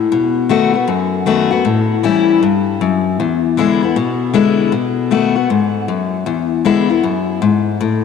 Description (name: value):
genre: rock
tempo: 156 BPM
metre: 4/4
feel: swing 64% on 8ths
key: E mixolydian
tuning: A4 = 440 Hz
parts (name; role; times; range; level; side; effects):
- picked steel-string acoustic guitar; solo; 0.0-8.0 s; E2 to F#4; -13 LUFS; left 6 dB; none
room: wet plate reverb, RT60 3.2 s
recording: none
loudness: -13 LUFS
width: side -6 dB against mid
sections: 0.0-6.3 A section; 6.3-8.0 A section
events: none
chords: 0.1 B7; 1.7 A7; 3.2 E7; 4.7 B7; 6.3 E7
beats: | 0.12 0.50 0.88 1.27 | 1.65 2.04 2.42 2.81 | 3.19 3.57 3.96 4.34 | 4.73 5.11 5.50 5.88 | 6.27 6.65 7.04 7.42 | 7.80